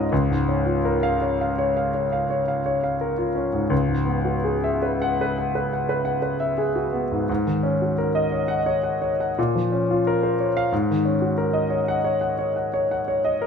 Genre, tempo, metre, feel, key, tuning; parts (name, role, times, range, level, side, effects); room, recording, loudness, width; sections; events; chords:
classical, impressionist solo piano; 85 BPM; 5/4; uneven beats, rubato; A4 = 440 Hz
clear grand piano; solo; 0.0-13.5 s; Db2 to Eb7; -20 LUFS; left 1 dB
wet stone room reverb, RT60 1.1 s; -20 LUFS; side -6 dB against mid
0.1-13.5 A section
0.1 Db6; 3.7 E69/C#; 7.3 Ab9sus4; 9.4 Bbmadd9; 10.7 Ab9sus4